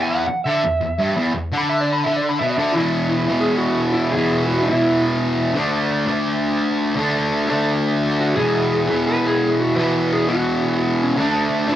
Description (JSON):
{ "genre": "rock", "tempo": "171 BPM", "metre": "4/4", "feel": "straight", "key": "E mixolydian", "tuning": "A4 = 440 Hz", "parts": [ { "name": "electric slide guitar", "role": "melody", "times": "0.0-5.1, 8.2-11.8 s", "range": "C#4 to B5", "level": "-21 LUFS", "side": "equal", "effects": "none" }, { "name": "fuzz guitar", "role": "riff", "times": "0.0-11.8 s", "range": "E2 to D4", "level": "-18 LUFS", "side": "equal", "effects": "distortion, cassette tape" } ], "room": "moderate small room reverb, RT60 0.5 s", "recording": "home recording on cassette", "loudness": "-17 LUFS", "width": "side -12 dB against mid", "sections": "0.0-2.7 A section; 2.7-11.8 B section", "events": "electric slide guitar solo 0.0-2.7", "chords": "0.0 E5; 5.6 D5; 8.4 E; 11.2 D5" }